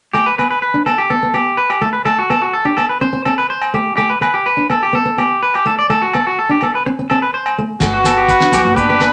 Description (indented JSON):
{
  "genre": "highlife guitar band",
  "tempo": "125 BPM",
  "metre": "4/4",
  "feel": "straight",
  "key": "G major",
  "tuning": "A4 = 440 Hz",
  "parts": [
    { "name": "fingerpicked plugged-in steel-string acoustic guitar", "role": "accompaniment", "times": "0.1-9.1 s", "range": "A3 to D4", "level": "-23 LUFS", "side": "equal", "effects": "none" },
    { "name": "electric guitar at the edge of break-up", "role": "arpeggios", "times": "0.1-9.1 s", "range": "F#4 to D5", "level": "-17 LUFS", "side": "equal", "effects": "none" },
    { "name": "agogo bells", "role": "percussion", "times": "0.1-9.1 s", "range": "none", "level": "-25 LUFS", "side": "equal", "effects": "none" },
    { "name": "warm trumpet", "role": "melody", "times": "7.8-9.1 s", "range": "F#4 to B4", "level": "-16 LUFS", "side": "equal", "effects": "none" },
    { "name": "mellow flugelhorn", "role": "second line", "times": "7.8-9.1 s", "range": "B3 to D4", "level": "-23 LUFS", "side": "equal", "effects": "none" },
    { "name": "upright bass", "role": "bass", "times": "7.8-9.1 s", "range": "G1 to D2", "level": "-29 LUFS", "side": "equal", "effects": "none" },
    { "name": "damped 70s drum kit", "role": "drums", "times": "7.8-9.1 s", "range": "crash cymbal, kick drum, snare drum", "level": "-23 LUFS", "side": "equal", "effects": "none" },
    { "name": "maracas", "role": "percussion", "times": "7.8-8.9 s", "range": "none", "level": "-33 LUFS", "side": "equal", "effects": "none" },
    { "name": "congas", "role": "percussion", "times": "8.5-8.8 s", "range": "none", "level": "-24 LUFS", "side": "equal", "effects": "none" }
  ],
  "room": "moderate studio reverb, RT60 0.8 s",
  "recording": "nothing above 10.6 kHz",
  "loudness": "-15 LUFS",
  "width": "mono",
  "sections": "0.1-7.8 A section; 7.8-9.1 B section",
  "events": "none",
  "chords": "0.1 G; 2.1 D (rootless); 3.0 C5; 4.0 G; 5.9 D (rootless); 6.9 Am; 7.8 Gmaj7"
}